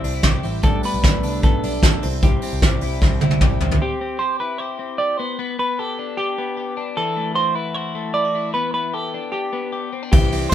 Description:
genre	jangly indie pop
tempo	152 BPM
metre	4/4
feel	straight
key	G major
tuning	A4 = 440 Hz
part	semi-hollow electric guitar	melody	0.0-10.5 s	G4 to E5	-24 LUFS	right 2 dB	none
part	electric guitar through a small old amp	accompaniment	0.0-3.8, 10.1-10.5 s	B2 to E4	-28 LUFS	right 4 dB	none
part	twelve-string electric guitar	arpeggios	0.0-10.5 s	E3 to A4	-27 LUFS	left 6 dB	spring reverb
part	vintage muted picked electric bass	bass	0.0-3.8, 10.1-10.5 s	A1 to C2	-25 LUFS	equal	none
part	soft brush drum kit	drums	0.0-3.8, 10.1-10.5 s	hi-hat, kick drum, ride cymbal, snare drum, toms	-17 LUFS	equal	none
part	tambourine	percussion	10.1-10.5 s	none	-34 LUFS	left 9 dB	none
room	light reverb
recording	band playing live in one room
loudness	-18 LUFS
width	side -11 dB against mid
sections	0.0-3.8 A section; 3.8-10.5 B section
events	drum fill 3.0-3.8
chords	0.0 C; 0.6 Gadd9/B; 2.0 C; 5.2 G; 7.0 Dadd9; 8.5 A9sus4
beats	0.24 | 0.64 1.04 1.43 1.83 | 2.23 2.62 3.02 3.41 | 3.81 4.20 4.60 4.99 | 5.39 5.78 6.18 6.57 | 6.97 7.36 7.76 8.15 | 8.55 8.94 9.34 9.73 | 10.13 10.52

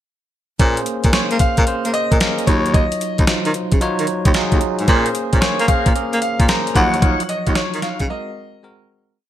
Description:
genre	R&B, new jack swing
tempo	112 BPM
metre	4/4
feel	swing 67% on 16ths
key	Eb dorian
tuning	A4 = 438 Hz
part	bell-like tine electric piano	accompaniment	0.6-9.2 s	F3 to Db5	-22 LUFS	right 1 dB	medium stereo tremolo
part	warm baritone saxophone	bass	0.6-8.1 s	Eb2 to Bb3	-20 LUFS	equal	none
part	clean 12-bit digital drum machine	drums	0.6-8.1 s	hi-hat, kick drum, snare drum	-17 LUFS	equal	gated reverb
part	bright grand piano	melody	1.1-8.9 s	Db5 to Bb5	-22 LUFS	left 1 dB	none
part	tonewheel organ	stabs	4.9-8.0 s	Db4 to Db5	-25 LUFS	left 1 dB	overdrive, slow rotary speaker
room	light reverb, digital ambience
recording	bright 1980s-style digital production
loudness	-15 LUFS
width	side -12 dB against mid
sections	0.6-9.2 verse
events	fade-out 7.0-9.2; break 8.1-9.2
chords	0.6 Bbm9; 2.5 Ebm9; 4.9 Bbm9; 6.8 Ebm9; 8.1 Ab9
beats	| 0.60 1.13 1.67 2.20 | 2.74 3.27 3.81 4.35 | 4.88 5.42 5.95 6.49 | 7.02 7.56 8.10 8.63

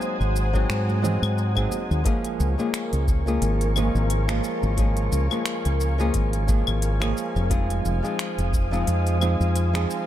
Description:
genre	sunset chillout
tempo	88 BPM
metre	4/4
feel	swing 56% on 16ths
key	Db major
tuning	A4 = 436 Hz
part	nylon-string guitar	accompaniment	0.0-10.1 s	F3 to Ab4	-27 LUFS	moving between left 4 dB and right 4 dB	auto-pan, dub echo
part	soft string machine	sustained chords	0.0-10.1 s	Bb4 to Eb6	-31 LUFS	equal	ensemble chorus
part	deep house drum kit	drums	0.0-10.1 s	claves, finger snaps, hi-hat, shaker	-32 LUFS	left 3 dB	dub echo
part	fingered electric bass	bass	0.2-9.8 s	F1 to Ab2	-23 LUFS	equal	none
part	electronic kick drum	drums	0.5-8.7 s	none	-25 LUFS	equal	overdrive
part	congas	percussion	0.9-1.9 s	none	-34 LUFS	right 1 dB	none
room	little or no reverb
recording	echo-heavy mix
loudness	-21 LUFS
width	side -12 dB against mid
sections	0.0-2.1 A section; 2.1-10.1 A section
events	none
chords	0.0 Ab7; 2.1 Db6; 7.5 Fm7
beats	0.01 0.69 1.38 | 2.06 2.74 3.42 4.10 | 4.78 5.47 6.15 6.83 | 7.51 8.19 8.88 9.56

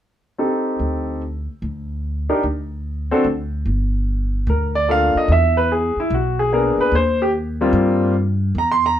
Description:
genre	jazz piano trio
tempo	147 BPM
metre	4/4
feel	swing 65% on 8ths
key	G minor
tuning	A4 = 440 Hz
part	clear concert grand piano	melody	0.4-9.0 s	G3 to C6	-17 LUFS	equal	none
part	upright bass	bass	0.8-9.0 s	G1 to G2	-21 LUFS	equal	none
room	light reverb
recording	dark, warm production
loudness	-17 LUFS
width	side -10 dB against mid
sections	0.4-3.7 A section; 3.7-9.0 B section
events	none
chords	0.4 Am7b5; 1.2 N.C.; 3.7 Gm9; 5.3 E7#11; 6.9 Eb6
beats	| 0.39 0.80 1.21 1.62 | 2.03 2.44 2.85 3.25 | 3.66 4.07 4.48 4.89 | 5.30 5.71 6.11 6.52 | 6.93 7.34 7.75 8.15 | 8.56 8.97

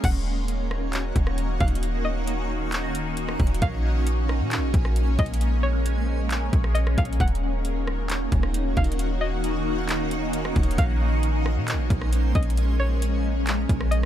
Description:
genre	hip hop, atmospheric cloud-rap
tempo	134 BPM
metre	4/4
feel	half-time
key	unclear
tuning	A4 = 439 Hz
part	string-like resonator pluck	melody	0.0-14.1 s	Db5 to Gb5	-34 LUFS	left 1 dB	chorus, low-pass filter, digital delay
part	shimmering ambient pad	sustained chords	0.0-14.1 s	Eb3 to Gb4	-28 LUFS	equal	chorus, built-in reverb, phaser, sidechain pumping
part	clean 808-style bass	bass	0.0-14.1 s	Eb1 to Bb2	-24 LUFS	equal	none
part	trap drum kit	drums	0.0-14.1 s	crash cymbal, handclaps, hi-hat, kick drum, rim click	-26 LUFS	equal	none
part	backwards swelling texture	texture	0.1-14.1 s	Db4 to Ab5	-38 LUFS	left 2 dB	built-in reverb
room	little or no reverb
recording	none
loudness	-22 LUFS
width	side -11 dB against mid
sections	0.0-14.1 A section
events	none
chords	0.0 Ebm7; 3.6 Bbm9; 7.2 Ebm7; 10.8 Bbm9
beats	| 0.04 0.48 0.93 1.38 | 1.83 2.28 2.72 3.17 | 3.62 4.07 4.51 4.96 | 5.41 5.86 6.31 6.75 | 7.20 7.65 8.10 8.54 | 8.99 9.44 9.89 10.34 | 10.78 11.23 11.68 12.13 | 12.57 13.02 13.47 13.92

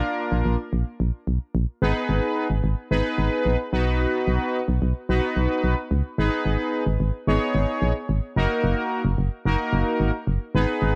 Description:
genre	synth-pop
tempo	110 BPM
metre	4/4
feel	straight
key	Eb minor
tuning	A4 = 445 Hz
part	analog synth brass	accompaniment	0.0-11.0 s	Bb3 to Db5	-27 LUFS	equal	chorus
part	solid FM bass	bass	0.0-10.9 s	Gb1 to Db2	-24 LUFS	equal	none
room	moderate scoring stage reverb, RT60 2.1 s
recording	none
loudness	-24 LUFS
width	mono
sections	0.0-1.8 A section; 1.8-11.0 B section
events	none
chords	0.0 Bb; 1.8 Abm; 3.7 B; 6.2 Abm; 8.4 Ebm/Gb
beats	0.18 0.73 1.27 | 1.82 2.37 2.91 3.46 | 4.00 4.55 5.09 5.64 | 6.18 6.73 7.27 7.82 | 8.37 8.91 9.46 10.00 | 10.55

